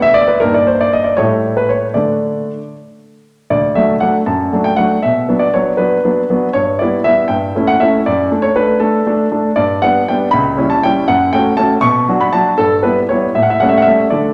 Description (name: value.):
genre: classical-period piano sonatina.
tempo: 79 BPM (dotted quarters).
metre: 6/8.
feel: straight.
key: D major.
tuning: A4 = 440 Hz.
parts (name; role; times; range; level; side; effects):
clear baby grand piano; solo; 0.0-14.3 s; C#2 to C#6; -14 LUFS; equal; none.
room: wet recital hall reverb, RT60 1.5 s.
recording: none.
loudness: -14 LUFS.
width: mono.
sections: 0.0-3.5 A section; 3.5-14.3 B section.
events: none.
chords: 0.4 Eb/G; 1.2 A7; 2.0 D5; 3.5 D; 4.3 D/F#; 5.0 Bm; 6.5 Em/G; 7.3 A7/G; 8.1 D/F#; 9.6 G; 10.3 C#m7b5; 11.1 F#m; 11.8 Bm; 12.6 Em/G; 13.3 A7.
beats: | 0.42 1.18 | 1.95 2.73 | 3.50 4.27 | 5.03 5.79 | 6.54 7.30 | 8.06 8.81 | 9.57 10.32 | 11.07 11.82 | 12.57 13.33 | 14.11.